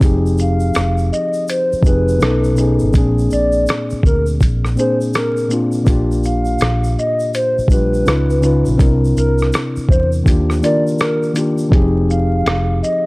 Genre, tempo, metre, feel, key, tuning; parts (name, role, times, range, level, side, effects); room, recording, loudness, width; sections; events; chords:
lo-fi hip hop; 82 BPM; 4/4; swing 64% on 16ths; A4 = 440 Hz
mellow reed electric piano; accompaniment; 0.0-13.1 s; Bb2 to Cb5; -18 LUFS; left 1 dB; low-pass filter
vintage muted fingered electric bass; bass; 0.0-12.8 s; F1 to E2; -17 LUFS; equal
lo-fi sampler-style drum kit; drums; 0.0-13.0 s; hi-hat, kick drum, rim click, shaker; -15 LUFS; equal
egg shaker; percussion; 0.0-11.7 s; -39 LUFS; right 2 dB
warbly nostalgic lead; melody; 0.4-13.1 s; Bb4 to F5; -20 LUFS; equal; chorus, low-pass filter
light reverb, digital ambience; dry, gritty hardware recording, vinyl crackle; -13 LUFS; side -23 dB against mid
0.0-11.7 A section; 11.7-13.1 A section
0.0 Fm7; 2.2 B9; 2.9 Bb7; 5.9 Bb69; 8.1 Db9; 8.8 C7; 10.3 Ebmaj7; 11.7 Fm7